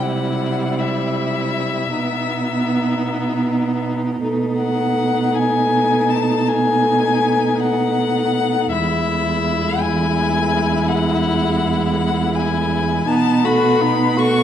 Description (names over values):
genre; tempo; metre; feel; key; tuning
classical, slow romantic movement for string quartet; 54 BPM (dotted quarters); 12/8; rubato; unclear; A4 = 440 Hz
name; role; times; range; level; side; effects
rich violin; melody; 0.0-14.4 s; E5 to C#6; -21 LUFS; left 6 dB; none
rich violin; second line; 0.0-14.4 s; D#4 to F#4; -24 LUFS; left 2 dB; none
rich viola; accompaniment; 0.0-14.4 s; G3 to B3; -22 LUFS; right 1 dB; none
rich cello; bass; 0.0-14.4 s; E2 to C3; -21 LUFS; right 4 dB; none
room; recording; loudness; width
wet recital hall reverb, RT60 1.6 s; dark, warm production; -16 LUFS; side -10 dB against mid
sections
0.0-14.4 A section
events
none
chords
0.0 C; 1.9 B; 4.2 B7; 8.7 E; 13.1 B7